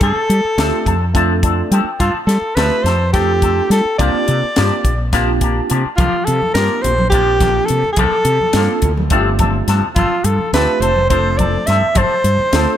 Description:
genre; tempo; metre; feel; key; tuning
electric jazz fusion; 211 BPM (eighths); 7/8; straight; unclear; A4 = 443 Hz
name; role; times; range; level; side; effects
breathy soprano saxophone; melody; 0.0-12.8 s; F4 to E5; -17 LUFS; equal; none
electric guitar with an envelope filter; stabs; 0.0-12.7 s; F3 to A4; -22 LUFS; left 5 dB; lush chorus
mellow fretless electric bass; bass; 0.0-12.7 s; F1 to G3; -17 LUFS; equal; none
tight funk drum kit; drums; 0.0-12.7 s; hi-hat, kick drum, snare drum; -19 LUFS; equal; none
barky tine electric piano; accompaniment; 0.6-12.8 s; A3 to A5; -22 LUFS; right 3 dB; medium stereo tremolo, phaser
congas; percussion; 6.0-12.7 s; none; -24 LUFS; left 1 dB; none
room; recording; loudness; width
light reverb; none; -13 LUFS; side -10 dB against mid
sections
0.0-12.8 A section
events
tine electric piano fill 1.2-2.0, 5.1-6.0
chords
0.0 G9sus4; 4.0 C9sus4; 9.1 G9sus4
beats
| 0.01 0.30 0.58 0.87 1.15 1.44 1.72 | 2.01 2.29 2.58 2.86 3.14 3.43 3.71 | 4.00 4.28 4.57 4.85 5.14 5.42 5.71 | 5.99 6.27 6.56 6.84 7.13 7.41 7.70 | 7.98 8.26 8.55 8.83 9.12 9.40 9.69 | 9.97 10.26 10.54 10.82 11.11 11.39 11.68 | 11.96 12.25 12.53

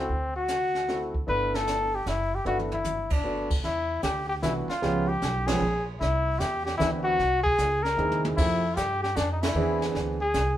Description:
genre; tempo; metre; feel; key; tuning
jazz, small-group swing and bop; 152 BPM; 3/4; swing 66% on 8ths; G major; A4 = 438 Hz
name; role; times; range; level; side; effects
mellow trumpet; melody; 0.0-10.6 s; C4 to B4; -27 LUFS; left 2 dB; none
warm concert grand piano; accompaniment; 0.0-10.2 s; E3 to G#4; -29 LUFS; right 2 dB; none
upright bass; bass; 0.0-10.6 s; F#1 to G2; -32 LUFS; right 1 dB; none
jazz brush drum kit; drums; 0.1-10.6 s; brushed snare drum, crash cymbal, hi-hat, kick drum, ride cymbal, snare drum, toms; -32 LUFS; right 1 dB; none
room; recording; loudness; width
moderate studio reverb, RT60 0.8 s; band playing live in one room; -24 LUFS; side -12 dB against mid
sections
0.0-3.6 A section; 3.6-10.6 B section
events
drum fill 2.5-3.2, 8.0-8.4; band accent 3.0, 5.4, 9.4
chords
0.1 D7; 1.3 G6; 3.6 Em7; 4.8 C#7#11; 6.0 Cmaj9; 7.2 C7alt; 8.4 Fmaj9; 9.6 E7b13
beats
| 0.09 0.48 0.88 | 1.27 1.66 2.06 | 2.45 2.85 3.24 | 3.63 4.03 4.42 | 4.82 5.21 5.61 | 6.00 6.39 6.79 | 7.18 7.58 7.97 | 8.37 8.76 9.16 | 9.55 9.94 10.34

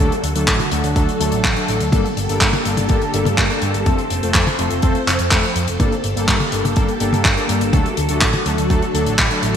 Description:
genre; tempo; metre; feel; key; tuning
italo disco; 124 BPM; 4/4; straight; G minor; A4 = 440 Hz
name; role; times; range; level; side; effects
phased string machine; sustained chords; 0.0-9.6 s; D3 to C5; -23 LUFS; equal; ensemble chorus, phaser
analog synth brass; stabs; 0.0-9.6 s; F3 to A4; -22 LUFS; left 1 dB; chorus, ping-pong delay
hollow-body short-scale picked electric bass; bass; 0.0-9.5 s; F1 to G2; -22 LUFS; equal; none
damped 70s drum kit; drums; 0.1-9.6 s; handclaps, hi-hat, toms; -20 LUFS; equal; gated reverb
electronic kick drum; drums; 0.5-9.3 s; none; -19 LUFS; equal; none
room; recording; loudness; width
moderate lush hall reverb, RT60 1.8 s, small room ambience; bright 1980s-style digital production; -15 LUFS; side -8 dB against mid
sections
0.0-9.6 A section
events
none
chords
0.0 D; 1.9 Gmadd9; 3.9 F; 5.8 Gmadd9; 7.7 D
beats
0.48 0.96 1.44 | 1.93 2.41 2.90 3.38 | 3.86 4.35 4.83 5.32 | 5.80 6.28 6.77 7.25 | 7.73 8.22 8.70 9.19

